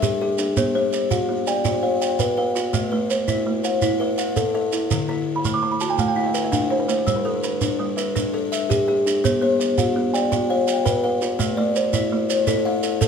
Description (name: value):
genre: southern african traditional, mbira-style interlocking cycle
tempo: 111 BPM (dotted quarters)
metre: 12/8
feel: straight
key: A equiheptatonic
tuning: A4 = 441 Hz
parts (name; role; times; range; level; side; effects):
- buzzing kalimba; arpeggios; 0.0-13.1 s; D3 to G5+29c; -22 LUFS; left 4 dB; none
- kalimba; arpeggios; 0.0-13.1 s; D3 to D6; -24 LUFS; right 4 dB; none
- shekere; percussion; 0.0-13.1 s; none; -27 LUFS; right 6 dB; none
room: moderate recital hall reverb, RT60 1.6 s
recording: none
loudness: -19 LUFS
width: side -6 dB against mid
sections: 0.0-11.4 A section; 11.4-13.1 B section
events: kalimba fill 5.2-7.1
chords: 0.0 G5; 0.6 Bm; 2.7 Am; 4.9 D; 7.1 G; 9.2 Bm; 11.4 Am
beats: 0.03 | 0.57 1.11 1.65 2.20 | 2.74 3.28 3.82 4.36 | 4.91 5.45 5.99 6.53 | 7.07 7.62 8.16 8.70 | 9.24 9.78 10.32 10.86 | 11.40 11.93 12.47 13.01